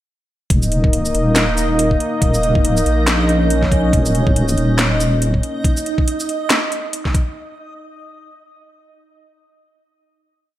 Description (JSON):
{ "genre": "deep dubstep", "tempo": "140 BPM", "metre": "4/4", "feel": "swing 57% on 16ths, half-time", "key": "unclear", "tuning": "A4 = 440 Hz", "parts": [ { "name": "dark analog pad", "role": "sustained chords", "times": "0.5-5.6 s", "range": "Bb3 to Eb5", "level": "-20 LUFS", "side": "equal", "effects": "chorus" }, { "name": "deep soft wobble bass", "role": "bass", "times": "0.5-5.4 s", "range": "Eb1 to Bb1", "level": "-17 LUFS", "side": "equal", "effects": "chorus" }, { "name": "electronic kick drum", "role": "drums", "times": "0.5-7.2 s", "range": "none", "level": "-17 LUFS", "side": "equal", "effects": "small room ambience" }, { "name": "garage drum kit", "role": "drums", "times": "0.5-7.2 s", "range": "handclaps, hi-hat, shaker, snare drum", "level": "-20 LUFS", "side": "equal", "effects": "small room ambience" }, { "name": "backwards swelling texture", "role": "texture", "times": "1.3-5.7 s", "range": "Eb4 to Eb5", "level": "-24 LUFS", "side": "right 2 dB", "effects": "built-in reverb" } ], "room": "light reverb, digital ambience", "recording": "none", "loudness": "-14 LUFS", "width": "side -14 dB against mid", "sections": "0.5-7.4 drop", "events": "drop 0.5-7.4", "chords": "0.5 Eb5" }